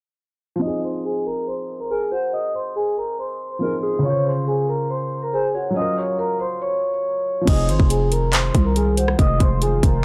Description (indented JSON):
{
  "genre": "hip hop, trap",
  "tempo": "140 BPM",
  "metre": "4/4",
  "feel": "half-time",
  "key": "F phrygian",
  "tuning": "A4 = 440 Hz",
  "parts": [
    { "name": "vibraphone with soft mallets", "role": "melody", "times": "0.6-10.0 s", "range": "Gb4 to Eb6", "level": "-25 LUFS", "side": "equal", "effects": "low-pass filter" },
    { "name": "dark baby grand piano", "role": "accompaniment", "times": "0.6-10.0 s", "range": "Db3 to C5", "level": "-28 LUFS", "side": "equal", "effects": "low-pass filter" },
    { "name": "hollow clarinet-like synth lead", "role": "second line", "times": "1.9-5.7, 8.8-9.2 s", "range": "Ab4 to Db5", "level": "-30 LUFS", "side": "equal", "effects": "chorus, tape echo" },
    { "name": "deep dark ambient pad", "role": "sustained chords", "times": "8.5-10.0 s", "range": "Eb3 to C5", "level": "-34 LUFS", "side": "equal", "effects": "chorus, built-in reverb" },
    { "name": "growling 808-style bass", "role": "bass", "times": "7.5-10.0 s", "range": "F1 to C2", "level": "-22 LUFS", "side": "equal", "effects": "none" },
    { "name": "trap drum kit", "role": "drums", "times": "7.5-9.9 s", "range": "crash cymbal, handclaps, hi-hat, kick drum, rim click", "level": "-21 LUFS", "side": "equal", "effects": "none" }
  ],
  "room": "light reverb, digital ambience",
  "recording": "dark, warm production",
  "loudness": "-21 LUFS",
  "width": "mono",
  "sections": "0.6-7.5 A section; 7.5-10.0 B section",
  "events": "filter sweep 0.6-7.5",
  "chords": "0.6 Fm7; 4.0 Dbmaj7; 5.8 Gbmaj7; 7.5 Fm7"
}